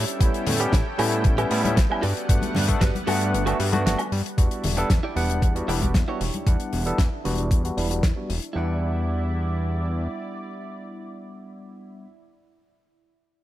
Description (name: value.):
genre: nu-disco, nu disco.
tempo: 115 BPM.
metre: 4/4.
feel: straight.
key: E dorian.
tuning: A4 = 441 Hz.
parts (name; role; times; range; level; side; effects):
lush unison pad; sustained chords; 0.0-12.1 s; G3 to G5; -34 LUFS; equal; chorus, sidechain pumping.
direct-recorded clean electric guitar; riff; 0.0-12.1 s; E4 to E5; -33 LUFS; right 4 dB; lush chorus, vintage 12-bit sampler grit, dub echo.
fat analog bass; bass; 0.0-10.1 s; E1 to A2; -26 LUFS; equal; sidechain pumping.
damped 70s drum kit; drums; 0.1-8.5 s; hi-hat, snare drum, woodblock; -28 LUFS; left 1 dB; none.
barky tine electric piano; accompaniment; 0.2-12.1 s; G3 to F#5; -28 LUFS; equal; medium stereo tremolo, sidechain pumping, low-pass filter, dub echo.
electronic kick drum; drums; 0.2-8.1 s; none; -21 LUFS; equal; none.
congas; percussion; 0.5-6.4 s; none; -31 LUFS; left 2 dB; none.
room: small room ambience.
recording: none.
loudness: -21 LUFS.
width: side -14 dB against mid.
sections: 0.0-4.4 A section; 4.4-8.6 B section; 8.6-12.7 C section.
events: drop 0.0-4.4; kick drops out 3.3-4.4; filter sweep on tine electric piano 4.4-8.6; filter sweep on analog synth pad 4.4-8.6.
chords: 0.0 A7; 2.0 Gmaj7; 4.4 Em7.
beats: | 0.20 0.73 1.25 1.77 | 2.29 2.81 3.34 3.86 | 4.38 4.90 5.42 5.94 | 6.47 6.99 7.51 8.03 | 8.55 9.07 9.60 10.12 | 10.64 11.16 11.68.